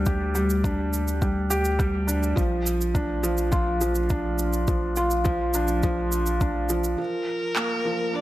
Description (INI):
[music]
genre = piano and strings electronica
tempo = 104 BPM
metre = 4/4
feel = straight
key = unclear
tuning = A4 = 439 Hz
[part]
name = felt-muted upright piano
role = riff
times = 0.0-8.2 s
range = F3 to G4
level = -25 LUFS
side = equal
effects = tape echo
[part]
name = round analog bass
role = bass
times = 0.0-7.0 s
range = Bb1 to D2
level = -27 LUFS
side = equal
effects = sidechain pumping
[part]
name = electronic kick drum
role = drums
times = 0.1-6.5 s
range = none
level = -25 LUFS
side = equal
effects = overdrive
[part]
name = electronic shaker and handclaps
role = drums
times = 0.1-7.7 s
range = none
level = -31 LUFS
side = right 2 dB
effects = none
[part]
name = warm violin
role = melody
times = 7.0-8.2 s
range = Bb4 to D5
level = -28 LUFS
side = left 1 dB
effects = none
[sound]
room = light reverb, digital ambience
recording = none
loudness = -22 LUFS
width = side -15 dB against mid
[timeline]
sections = 0.0-7.0 A section; 7.0-8.2 B section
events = none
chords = 0.0 Dsus4; 2.4 Bb; 7.0 Bb5/F